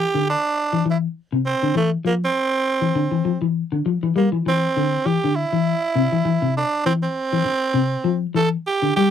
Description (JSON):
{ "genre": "afrobeat", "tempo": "100 BPM", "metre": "4/4", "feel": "swing 56% on 16ths", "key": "C mixolydian", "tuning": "A4 = 444 Hz", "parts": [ { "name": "growling tenor saxophone", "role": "melody", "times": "0.0-9.1 s", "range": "A3 to A4", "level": "-21 LUFS", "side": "right 4 dB", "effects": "none" }, { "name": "electric guitar at the edge of break-up", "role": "arpeggios", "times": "0.0-9.1 s", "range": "C3 to G3", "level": "-20 LUFS", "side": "left 4 dB", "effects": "wide subtle chorus" } ], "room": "light reverb", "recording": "dry, close 1970s-style studio recording", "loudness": "-18 LUFS", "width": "side -9 dB against mid", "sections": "0.0-4.1 A section; 4.1-9.1 B section", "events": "none", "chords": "0.0 C; 1.8 Dm9; 4.1 C" }